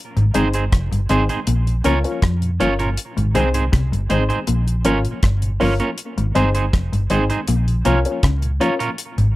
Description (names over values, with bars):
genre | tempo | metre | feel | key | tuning
roots reggae | 80 BPM | 4/4 | straight | unclear | A4 = 438 Hz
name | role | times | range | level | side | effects
mellow tonewheel organ | accompaniment | 0.2-9.3 s | Ab2 to Db4 | -27 LUFS | left 1 dB | chorus vibrato, stopped rotary speaker, dub echo
mellow electric guitar | riff | 0.2-9.3 s | F2 to F3 | -24 LUFS | left 2 dB | none
vintage muted fingered electric bass | bass | 0.2-9.3 s | F1 to F2 | -19 LUFS | equal | none
deep reggae drum kit | drums | 0.2-9.3 s | hi-hat, kick drum, rim click | -21 LUFS | equal | none
semi-hollow electric guitar | accompaniment | 0.3-8.9 s | C4 to Db5 | -23 LUFS | right 4 dB | dub echo
warm upright piano | stabs | 0.3-8.8 s | C4 to Db5 | -23 LUFS | left 4 dB | none
room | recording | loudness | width
light reverb | none | -16 LUFS | side -17 dB against mid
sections
0.0-9.4 A section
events
none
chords
0.0 Ab; 1.5 Bbm; 3.0 Ab; 4.5 Bbm; 6.0 Ab; 7.5 Bbm